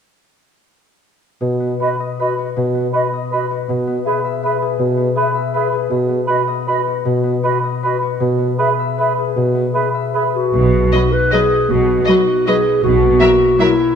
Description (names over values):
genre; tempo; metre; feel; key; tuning
classical, orchestral ballroom waltz; 146-174 BPM; 3/4; rubato; B major; A4 = 442 Hz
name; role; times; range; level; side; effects
dark bassoon; accompaniment; 1.4-9.7 s; B2; -21 LUFS; right 3 dB; none
concert harp; arpeggios; 1.4-14.0 s; B2 to E5; -21 LUFS; left 8 dB; none
dark clarinet; second line; 1.8-14.0 s; E4 to B4; -18 LUFS; left 1 dB; none
dark cor anglais; second line; 1.8-10.3 s; B4; -21 LUFS; right 4 dB; none
large flute ensemble; second line; 1.8-10.2 s; D#5 to E5; -25 LUFS; equal; none
rich studio double bass section; bass; 10.5-13.1 s; B1; -20 LUFS; right 4 dB; none
rich symphonic cello section; bass; 10.5-13.1 s; B2; -21 LUFS; right 6 dB; none
rich studio violin section; melody; 10.9-13.7 s; D#5 to E5; -23 LUFS; equal; none
rich symphonic violin section; second line; 10.9-13.7 s; A#4 to B4; -26 LUFS; left 2 dB; none
warm symphonic viola section; accompaniment; 10.9-13.7 s; F#3; -20 LUFS; equal; none
room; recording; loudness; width
moderate concert hall reverb, RT60 1.8 s; dark, warm production; -14 LUFS; side -7 dB against mid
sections
1.4-10.5 A section; 10.5-14.0 B section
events
none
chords
1.4 B; 3.7 E/B; 5.9 B; 8.2 E/B; 10.5 B; 12.8 F#7/B